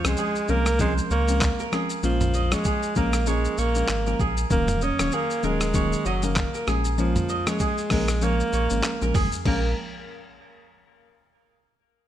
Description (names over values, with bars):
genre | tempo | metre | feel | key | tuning
afrobeats | 97 BPM | 4/4 | swing 58% on 16ths | Bb minor | A4 = 441 Hz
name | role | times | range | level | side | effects
breathy alto saxophone | melody | 0.0-9.7 s | F3 to Db4 | -27 LUFS | right 1 dB | none
soft round pluck | accompaniment | 0.0-9.7 s | Eb3 to Db4 | -29 LUFS | left 2 dB | chorus
kora | riff | 0.0-9.7 s | Ab4 to Eb5 | -31 LUFS | right 3 dB | none
warm sub bass | bass | 0.0-9.7 s | Eb1 to Db2 | -26 LUFS | equal | none
dusty soul sampler-style drum kit | drums | 0.0-9.6 s | crash cymbal, handclaps, hi-hat, kick drum, rim click, shaker, toms | -27 LUFS | equal | none
room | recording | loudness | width
light reverb | none | -21 LUFS | side -11 dB against mid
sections
0.0-9.5 A section; 9.5-11.9 B section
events
none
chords
0.0 Dbmaj7; 2.0 Bbm7; 4.5 Ebm7; 6.7 Bbm7